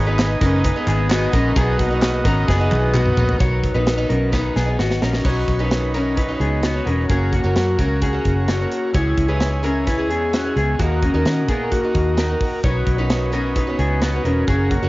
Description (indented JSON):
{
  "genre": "jangly indie pop",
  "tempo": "130 BPM",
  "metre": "4/4",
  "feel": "straight",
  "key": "B major",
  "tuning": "A4 = 440 Hz",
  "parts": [
    { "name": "combo organ", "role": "accompaniment", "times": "0.0-14.9 s", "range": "B3 to D#5", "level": "-27 LUFS", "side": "right 2 dB", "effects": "cassette tape" },
    { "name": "picked twelve-string acoustic guitar", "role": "accompaniment", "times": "0.0-14.9 s", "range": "B2 to G#4", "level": "-26 LUFS", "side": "right 2 dB", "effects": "cassette tape" },
    { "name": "electric guitar through a small old amp", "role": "arpeggios", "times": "0.0-14.9 s", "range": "A#3 to C#5", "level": "-22 LUFS", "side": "left 2 dB", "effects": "lush chorus, cassette tape, analog delay" },
    { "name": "vintage muted fingered electric bass", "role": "bass", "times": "0.0-14.9 s", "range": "E1 to D#3", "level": "-21 LUFS", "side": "equal", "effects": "none" },
    { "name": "modern studio drum kit", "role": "drums", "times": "0.2-14.8 s", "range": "crash cymbal, hi-hat, kick drum, snare drum, toms", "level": "-22 LUFS", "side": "equal", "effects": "cassette tape" },
    { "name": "group handclap", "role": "percussion", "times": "0.2-3.0 s", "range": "none", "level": "-34 LUFS", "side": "left 1 dB", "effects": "none" }
  ],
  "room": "small room ambience",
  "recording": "home recording on cassette, nothing above 7.6 kHz",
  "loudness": "-16 LUFS",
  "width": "side -19 dB against mid",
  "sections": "0.0-3.4 A section; 3.4-5.2 B section; 5.2-14.9 C section",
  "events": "drum fill 2.5-3.4, 4.3-5.2",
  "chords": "0.0 G#m; 3.4 B; 5.2 Badd9; 7.1 F#; 8.9 C#m; 10.8 D#m; 12.6 Badd9"
}